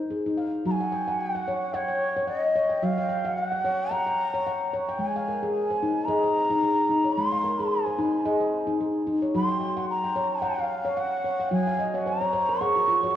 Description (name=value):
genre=world meditative, meditative tuned percussion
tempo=110 BPM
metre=4/4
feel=swing 56% on 16ths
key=Gb lydian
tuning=A4 = 440 Hz
part: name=breathy bright bansuri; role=melody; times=0.0-13.2 s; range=Db5 to Db6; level=-26 LUFS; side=equal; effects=tape echo
part: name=handpan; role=arpeggios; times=0.0-13.2 s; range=Gb3 to G5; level=-26 LUFS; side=left 1 dB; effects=none
room=wet echo chamber reverb, RT60 2.2 s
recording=worn, warbling old tape, cassette tape, warbly pitch drift, small room ambience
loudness=-23 LUFS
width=side -11 dB against mid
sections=0.7-13.2 A section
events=handpan fill 11.7-13.2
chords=0.0 Ab5; 0.7 Gb5; 5.0 Ab; 9.3 Gb